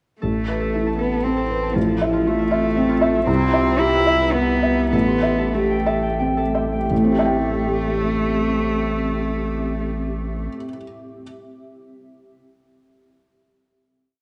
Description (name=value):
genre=neoclassical piano and strings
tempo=83-120 BPM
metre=3/4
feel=rubato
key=A minor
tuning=A4 = 440 Hz
part: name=dark cello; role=second line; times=0.2-10.5 s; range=F3 to E4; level=-25 LUFS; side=equal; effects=none
part: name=felt-muted upright piano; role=accompaniment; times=0.2-11.2 s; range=A1 to G5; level=-24 LUFS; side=equal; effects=none
part: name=granular cloud pad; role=sustained chords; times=1.1-10.5 s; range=A3 to E5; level=-30 LUFS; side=equal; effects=built-in reverb
part: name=concert harp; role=arpeggios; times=0.2-10.6 s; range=E4 to C6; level=-31 LUFS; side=equal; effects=tape echo
part: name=saturated sub bass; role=bass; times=0.2-10.5 s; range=A1 to C2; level=-30 LUFS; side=equal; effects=none
room=moderate plate reverb, RT60 2.5 s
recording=none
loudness=-20 LUFS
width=mono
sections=0.2-6.9 theme; 6.9-11.2 final chord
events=slowing down 2.5-6.9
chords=0.2 Amadd9; 1.8 Fmaj7/A; 3.3 Cmaj7; 4.9 Am7